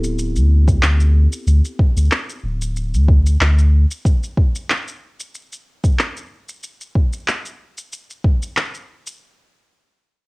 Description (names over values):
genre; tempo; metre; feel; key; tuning
organic downtempo; 93 BPM; 4/4; swing 54% on 16ths; unclear; A4 = 438 Hz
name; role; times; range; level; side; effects
warm sub bass; bass; 0.0-3.9 s; D1 to D2; -13 LUFS; equal; transformer saturation, sidechain pumping
electronic shaker and handclaps; drums; 0.0-9.2 s; none; -21 LUFS; equal; cassette tape
electronic kick drum; drums; 0.7-8.4 s; none; -14 LUFS; equal; cassette tape
room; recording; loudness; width
little or no reverb; home recording on cassette; -15 LUFS; side -26 dB against mid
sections
0.0-9.2 A section; 9.2-10.3 B section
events
none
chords
none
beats
0.18 0.82 | 1.47 2.11 2.76 3.40 | 4.05 4.69 5.34 5.98 | 6.63 7.28 7.92 8.56